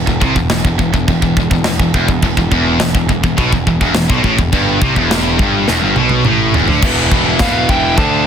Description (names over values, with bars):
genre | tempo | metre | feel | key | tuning
heavy metal | 104 BPM | 4/4 | straight | E phrygian | A4 = 441 Hz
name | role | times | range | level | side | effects
heavy high-gain guitar | riff | 0.0-8.3 s | E2 to D4 | -18 LUFS | left 12 dB | distortion
heavy high-gain guitar | riff | 0.0-8.3 s | E2 to D4 | -18 LUFS | right 12 dB | distortion
overdriven picked electric bass | bass | 0.0-8.3 s | E1 to D2 | -19 LUFS | equal | none
tight metal drum kit | drums | 0.1-8.1 s | china cymbal, crash cymbal, kick drum, snare drum, toms | -16 LUFS | equal | none
scooped high-gain guitar | riff | 2.2-8.3 s | E2 to F4 | -20 LUFS | left 2 dB | distortion
nasal lead guitar with a parked wah | melody | 7.4-8.2 s | F5 to A5 | -16 LUFS | equal | overdrive
high-gain lead guitar | second line | 7.4-8.3 s | B4 to F5 | -24 LUFS | right 5 dB | distortion
room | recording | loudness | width
light reverb | dense, heavily limited modern master | -11 LUFS | side -8 dB against mid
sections
0.0-6.8 A section; 6.8-8.3 B section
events
drum fill 5.7-6.8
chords
0.0 Em